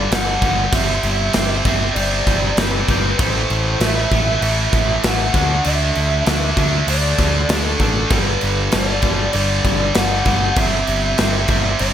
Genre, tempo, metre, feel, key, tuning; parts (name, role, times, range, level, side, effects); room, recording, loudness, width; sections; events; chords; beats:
hard rock; 98 BPM; 4/4; straight; A4 = 437 Hz
lead guitar through a small cranked amp; melody; 0.0-11.9 s; A4 to F#5; -23 LUFS; right 1 dB; overdrive
heavy high-gain guitar; riff; 0.0-11.9 s; G2 to D4; -20 LUFS; right 1 dB; distortion
growling picked electric bass; bass; 0.0-11.9 s; G1 to D2; -21 LUFS; equal; overdrive
gated 80s drum kit; drums; 0.1-11.9 s; crash cymbal, kick drum, snare drum; -20 LUFS; equal; gated reverb
moderate lush hall reverb, RT60 2.5 s; bright 1980s-style digital production; -15 LUFS; side -10 dB against mid
0.0-11.9 A section
0.0 G5; 0.7 C/G; 3.2 Am; 5.3 D5; 8.1 G; 10.6 C/G
0.11 | 0.73 1.34 1.96 2.57 | 3.19 3.80 4.42 5.03 | 5.65 6.26 6.88 7.50 | 8.11 8.73 9.34 9.96 | 10.57 11.19 11.81